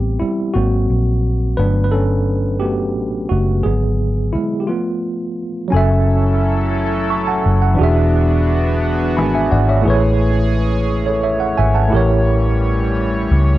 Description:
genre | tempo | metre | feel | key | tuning
slow six-eight R&B | 58 BPM (dotted quarters) | 6/8 | straight | F# minor | A4 = 440 Hz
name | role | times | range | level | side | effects
tine electric piano | accompaniment | 0.0-13.6 s | D3 to C#6 | -18 LUFS | right 1 dB | overdrive, fast stereo tremolo
vintage muted fingered electric bass | bass | 0.0-13.6 s | E1 to C#2 | -16 LUFS | equal | none
chorused pulse-width pad | sustained chords | 5.7-13.6 s | E3 to C#5 | -22 LUFS | left 1 dB | none
room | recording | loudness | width
little or no reverb | dry, close 1970s-style studio recording | -14 LUFS | side -15 dB against mid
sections
0.0-5.7 A section; 5.7-13.6 B section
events
tine electric piano solo 0.0-5.7; break 4.7-5.7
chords
0.0 Am9; 0.5 G#9; 1.6 Gmaj7; 3.6 G#m7b5; 4.7 F; 5.7 F#m9; 7.8 E9; 9.8 Amaj9; 11.9 A7b9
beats
0.54 | 1.57 2.61 | 3.64 4.67 | 5.71 6.74 | 7.78 8.81 | 9.85 10.88 | 11.92 12.95

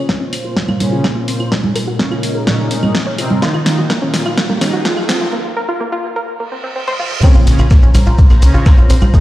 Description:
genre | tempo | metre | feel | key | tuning
melodic techno | 126 BPM | 4/4 | straight | Bb minor | A4 = 439 Hz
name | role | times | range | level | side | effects
sweeping resonant pad | sustained chords | 0.0-9.2 s | Bb2 to Bb5 | -25 LUFS | equal | chorus, sidechain pumping
soft round pluck | arpeggios | 0.0-9.2 s | Bb3 to Db5 | -22 LUFS | equal | chorus, sidechain pumping, dub echo
filtered dub chord stab | stabs | 0.0-9.2 s | Bb2 to F4 | -23 LUFS | right 2 dB | phaser, ensemble chorus, sidechain pumping, dub echo
analog drone | drone | 0.2-5.3 s | Bb2 | -26 LUFS | left 1 dB | chorus, sidechain pumping
riser and reverse cymbal | sound effects | 3.0-7.2 s | none | -28 LUFS | right 2 dB | none
electronic kick drum | drums | 0.1-9.2 s | none | -10 LUFS | equal | overdrive, high-pass filter on kick, high-pass filter on room
house drum kit | drums | 0.1-9.1 s | claves, congas, crash cymbal, hi-hat, snare drum, toms | -18 LUFS | equal | sidechain pumping on hats, sidechain pumping on perc, sidechain pumping on toms, sidechain pumping on cymbals
soft supersaw | melody | 0.8-8.7 s | C3 to Eb4 | -22 LUFS | right 1 dB | sidechain pumping, low-pass filter, tape echo
dusty soul sampler-style drum kit | drums | 7.2-9.2 s | ride cymbal, snare drum | -32 LUFS | equal | sidechain pumping on cymbals, high-pass filter on cymbals, high-pass filter on snare
shekere | percussion | 7.2-9.2 s | none | -32 LUFS | left 2 dB | none
tight sequencer bass | bass | 7.4-9.1 s | Bb1 to C2 | -10 LUFS | equal | tube saturation, sidechain pumping
room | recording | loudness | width
moderate lush hall reverb, RT60 1.9 s | played on a big sound system in a bare room, stone room reverb, high-pass filter | -11 LUFS | side -15 dB against mid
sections
0.0-7.2 A section; 7.2-9.2 B section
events
build-up 0.0-7.2; drum fill 0.0-5.3, 6.9-7.2; filter sweep on synth arpeggio sound 0.0-7.2; filter sweep on supersaw synth 0.0-7.2; break 5.3-7.2; reverse cymbal 6.5-7.2; drop 7.2-9.2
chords
0.0 Bbmadd9; 1.5 Absus2/Bb; 3.4 Ebmadd9/Bb; 5.3 F5/Bb; 7.2 Bbmadd9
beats
0.09 0.56 1.04 | 1.52 1.99 2.47 2.95 | 3.42 3.90 4.38 4.85 | 5.33 5.80 6.28 6.76 | 7.23 7.71 8.18 8.66 | 9.14

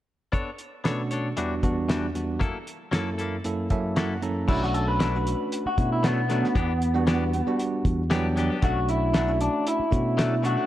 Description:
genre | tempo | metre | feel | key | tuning
straight-eighth soul blues | 116 BPM | 4/4 | swing 54% on 16ths | B minor from 4.5 s | A4 = 439 Hz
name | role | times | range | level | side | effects
direct-recorded clean electric guitar | stabs | 0.3-10.7 s | B2 to C#5 | -33 LUFS | left 4 dB | none
cloth-damped thuddy drum kit | drums | 0.3-10.6 s | crash cymbal, hi-hat, kick drum, snare drum | -28 LUFS | equal | none
bell-like tine electric piano | accompaniment | 0.8-10.7 s | E2 to A#5 | -28 LUFS | right 2 dB | medium stereo tremolo
electric guitar through a small old amp | melody | 4.5-10.7 s | B3 to B4 | -26 LUFS | equal | spring reverb
fingered electric bass | bass | 4.5-10.6 s | B1 to B2 | -26 LUFS | equal | none
room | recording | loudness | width
light reverb, small room ambience | none | -23 LUFS | side -13 dB against mid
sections
0.3-4.5 A section; 4.5-10.7 B section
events
tine electric piano fill 3.4-4.5, 7.8-8.6; clean electric guitar solo 4.5-10.7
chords
0.3 Bm9; 1.4 Em9; 2.4 F#7#9; 4.5 Bm7; 6.6 Em7; 8.6 Bm7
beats
| 0.34 0.85 1.37 1.89 | 2.41 2.93 3.45 3.96 | 4.48 5.00 5.52 6.04 | 6.55 7.07 7.59 8.11 | 8.62 9.14 9.66 10.17

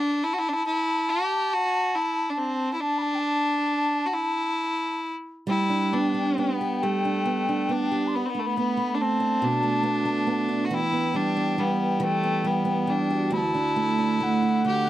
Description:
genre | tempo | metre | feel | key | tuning
celtic folk, Celtic slow air | 46 BPM (dotted quarters) | 6/8 | rubato | G major | A4 = 439 Hz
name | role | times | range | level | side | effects
clear fiddle | melody | 0.0-14.9 s | A3 to G4 | -26 LUFS | left 1 dB | none
reedy wooden flute | second line | 0.2-14.9 s | F#5 to C6 | -28 LUFS | left 2 dB | none
picked steel-string acoustic guitar | accompaniment | 5.5-14.9 s | D2 to G4 | -25 LUFS | right 3 dB | none
room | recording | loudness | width
little or no reverb | dry, close 1970s-style studio recording | -22 LUFS | side -13 dB against mid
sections
0.0-14.9 A section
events
none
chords
0.0 N.C.; 5.5 G; 8.1 Bm7; 10.7 Em; 13.3 Dadd9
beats
| 0.23 1.50 | 2.79 4.11 | 5.47 6.82 | 8.13 9.43 | 10.71 12.01 | 13.32 14.66

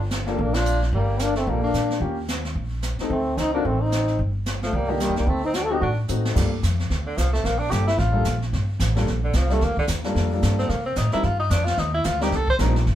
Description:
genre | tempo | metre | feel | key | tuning
jazz, small-group swing and bop | 221 BPM | 4/4 | swing 59% on 8ths | G minor | A4 = 440 Hz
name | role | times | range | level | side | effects
upright bass | bass | 0.0-12.9 s | G1 to C3 | -23 LUFS | equal | none
jazz brush drum kit | drums | 0.1-12.9 s | brushed snare drum, crash cymbal, hi-hat, kick drum, ride cymbal, snare drum | -30 LUFS | equal | none
clear trombone | melody | 0.3-5.9 s | D3 to A4 | -25 LUFS | left 2 dB | none
warm tenor saxophone | second line | 0.3-12.6 s | Bb2 to C5 | -26 LUFS | right 1 dB | none
warm concert grand piano | accompaniment | 0.3-12.7 s | G3 to Bb4 | -27 LUFS | left 2 dB | none
room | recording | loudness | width
moderate studio reverb, RT60 0.6 s | band playing live in one room | -20 LUFS | side -12 dB against mid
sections
0.0-6.4 A section; 6.4-12.9 B section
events
band accent 0.5; drum fill 6.1; tenor saxophone solo 6.4-12.9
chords
0.0 Gm; 2.0 Eb7; 3.1 D7(no3); 4.2 N.C.; 4.7 Cm7; 5.3 D7b9; 6.4 Gm7; 10.7 Cm7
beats
0.12 0.39 0.66 | 0.93 1.20 1.47 1.75 | 2.02 2.29 2.56 2.83 | 3.10 3.37 3.65 3.92 | 4.19 4.46 4.73 5.00 | 5.27 5.54 5.82 6.09 | 6.36 6.63 6.90 7.17 | 7.44 7.71 7.99 8.26 | 8.53 8.80 9.07 9.34 | 9.61 9.88 10.15 10.42 | 10.69 10.96 11.24 11.51 | 11.78 12.05 12.32 12.59 | 12.86

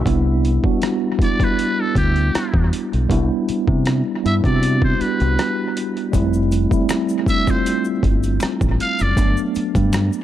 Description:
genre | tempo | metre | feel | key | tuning
R&B, neo-soul | 79 BPM | 4/4 | swing 54% on 16ths | unclear | A4 = 440 Hz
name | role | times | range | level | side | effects
mellow tine electric piano | accompaniment | 0.0-10.2 s | F#3 to G4 | -20 LUFS | right 1 dB | medium stereo tremolo
deep dub fingered electric bass | bass | 0.0-10.1 s | F1 to C3 | -18 LUFS | equal | none
boom bap sampler-style drum kit | drums | 0.1-10.1 s | hi-hat, kick drum, rim click | -21 LUFS | equal | overdrive
trumpet with metal mute | melody | 1.2-9.4 s | G4 to F5 | -24 LUFS | equal | analog delay
tube shaker and finger snaps | percussion | 6.1-10.2 s | none | -36 LUFS | left 3 dB | analog delay
room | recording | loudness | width
small room ambience | echo-heavy mix | -16 LUFS | side -12 dB against mid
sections
0.1-10.2 A section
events
none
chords
0.1 Cmaj9; 6.1 Fmaj9; 9.2 Gmaj9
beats
| 0.06 0.82 1.58 2.33 | 3.10 3.85 4.61 5.37 | 6.13 6.89 7.65 8.41 | 9.17 9.93

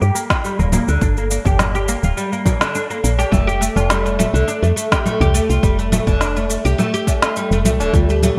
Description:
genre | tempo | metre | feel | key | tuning
organic downtempo | 104 BPM | 4/4 | straight | unclear | A4 = 440 Hz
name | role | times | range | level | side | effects
oud | arpeggios | 0.0-8.4 s | D3 to G4 | -22 LUFS | equal | low-pass filter, digital delay
woody FM bass | bass | 0.0-8.3 s | D1 to G2 | -20 LUFS | equal | none
electronic cabasa, snare drum and congas | drums | 0.0-8.4 s | none | -23 LUFS | equal | gated reverb
electronic kick drum | drums | 0.3-8.1 s | none | -20 LUFS | equal | overdrive
tabla | percussion | 0.6-8.4 s | none | -30 LUFS | equal | none
breathy mellow bansuri | melody | 7.9-8.4 s | F4 to G4 | -24 LUFS | equal | none
room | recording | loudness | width
moderate plate reverb, RT60 1.9 s, digital ambience | bright 1980s-style digital production | -17 LUFS | mono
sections
0.0-8.4 A section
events
none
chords
0.0 Gm; 3.3 F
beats
0.44 | 1.02 1.59 2.17 2.75 | 3.33 3.90 4.48 5.06 | 5.63 6.21 6.79 7.37 | 7.94

